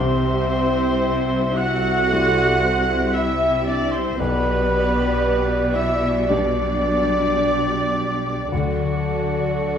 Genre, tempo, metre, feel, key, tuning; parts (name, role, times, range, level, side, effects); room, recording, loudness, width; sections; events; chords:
cinematic; 51-58 BPM; 4/4; rubato; A4 = 437 Hz
muted cello; melody; 0.0-9.8 s; F#3 to F#4; -27 LUFS; right 3 dB
muted studio violin section; melody; 0.0-9.8 s; F#4 to F#5; -29 LUFS; left 2 dB
clear clarinet; second line; 0.0-9.8 s; F#4 to F#5; -28 LUFS; right 1 dB
muted studio violin section; second line; 0.0-9.8 s; F#4 to F#5; -32 LUFS; right 3 dB
silver concert flute; second line; 0.0-9.8 s; F#5 to F#6; -28 LUFS; equal
muted studio viola section; accompaniment; 0.0-9.8 s; E4 to E5; -28 LUFS; left 1 dB
warm baby grand piano; accompaniment; 0.0-9.8 s; B1 to G4; -30 LUFS; left 2 dB
mellow French horn section; sustained chords; 0.0-9.8 s; G3 to E5; -26 LUFS; equal
concert harp; arpeggios; 0.0-9.8 s; B2 to A4; -29 LUFS; left 6 dB
muted studio cello section; bass; 0.0-9.8 s; B2 to D3; -28 LUFS; equal
muted studio double bass section; bass; 0.0-9.8 s; B1 to D2; -27 LUFS; right 2 dB
wet stone room reverb, RT60 1.1 s; -18 LUFS; side -8 dB against mid
0.0-9.8 A section
0.0 C; 4.2 G/B; 8.5 D